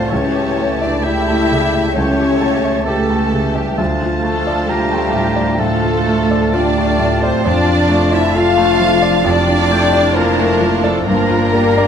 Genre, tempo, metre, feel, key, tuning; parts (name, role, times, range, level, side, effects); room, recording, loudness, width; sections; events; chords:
classical; 66 BPM; 4/4; rubato; D minor; A4 = 440 Hz
clear grand piano; melody; 0.0-11.9 s; C#2 to F5; -18 LUFS; left 1 dB
warm symphonic violin section; melody; 0.0-11.9 s; A5 to Bb5; -29 LUFS; left 3 dB
clear clarinet; second line; 0.0-11.9 s; C#4 to F4; -27 LUFS; right 1 dB
rich studio violin section; second line; 0.0-11.9 s; G4 to F5; -20 LUFS; left 3 dB
silver concert flute; second line; 0.0-11.9 s; G4 to F5; -25 LUFS; left 2 dB
warm oboe; second line; 0.0-11.9 s; G5 to Bb5; -25 LUFS; equal
mellow bassoon; accompaniment; 0.0-11.9 s; D3 to A3; -24 LUFS; right 2 dB
rich symphonic viola section; accompaniment; 0.0-11.9 s; A3 to G4; -24 LUFS; right 4 dB
mellow French horn section; sustained chords; 0.0-11.9 s; G3 to F4; -22 LUFS; left 6 dB
dark symphonic cello section; bass; 0.0-11.9 s; G3 to F4; -23 LUFS; right 3 dB
rich symphonic double bass section; bass; 0.0-11.9 s; F1 to D2; -23 LUFS; right 4 dB
moderate concert hall reverb, RT60 2.3 s; close, detailed microphones; -12 LUFS; side -8 dB against mid
0.0-11.9 A section
0.1 A7/C#; 3.8 Dm; 7.5 Dm/F; 11.1 Gm7